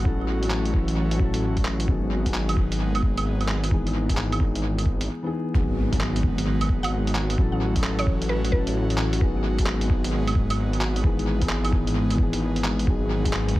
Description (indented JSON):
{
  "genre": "future garage",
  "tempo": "131 BPM",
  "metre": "4/4",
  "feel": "swing 66% on 16ths",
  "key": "G# phrygian",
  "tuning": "A4 = 439 Hz",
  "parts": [
    { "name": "felt-muted upright piano", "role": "accompaniment", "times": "0.0-13.6 s", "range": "E3 to A4", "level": "-28 LUFS", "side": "left 2 dB", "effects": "sidechain pumping, analog delay" },
    { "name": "airy breathy pad", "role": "sustained chords", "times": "0.0-13.6 s", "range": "D#3 to F#4", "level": "-31 LUFS", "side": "right 1 dB", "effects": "chorus, sidechain pumping" },
    { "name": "swelling detuned saw bass", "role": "bass", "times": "0.0-13.6 s", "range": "G#1 to A1", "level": "-26 LUFS", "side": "equal", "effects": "sidechain pumping" },
    { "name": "electronic kick drum", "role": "drums", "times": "0.1-13.6 s", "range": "none", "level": "-23 LUFS", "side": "equal", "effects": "small room ambience" },
    { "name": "lo-fi sampler-style drum kit", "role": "drums", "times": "0.4-13.5 s", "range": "claves, handclaps, hi-hat", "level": "-31 LUFS", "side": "right 2 dB", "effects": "small room ambience, analog delay" },
    { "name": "impact", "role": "sound effects", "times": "5.5-7.4 s", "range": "none", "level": "-34 LUFS", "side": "equal", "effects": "none" },
    { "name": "mallet-like synth pluck", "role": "melody", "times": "6.8-8.9 s", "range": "B4 to F#5", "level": "-34 LUFS", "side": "right 1 dB", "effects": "chorus, analog delay" }
  ],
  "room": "light reverb",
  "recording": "echo-heavy mix, vinyl crackle",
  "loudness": "-21 LUFS",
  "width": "side -17 dB against mid",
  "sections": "0.0-5.5 A section; 5.5-13.6 B section",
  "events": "break 5.1-5.5; impact 5.5-7.4",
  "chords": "0.1 F#m7/A; 1.9 G#m7; 3.7 Emaj7/G#; 5.5 G#m7; 7.4 F#m7/A; 9.2 G#m7; 11.0 Emaj7/G#; 12.9 G#m7"
}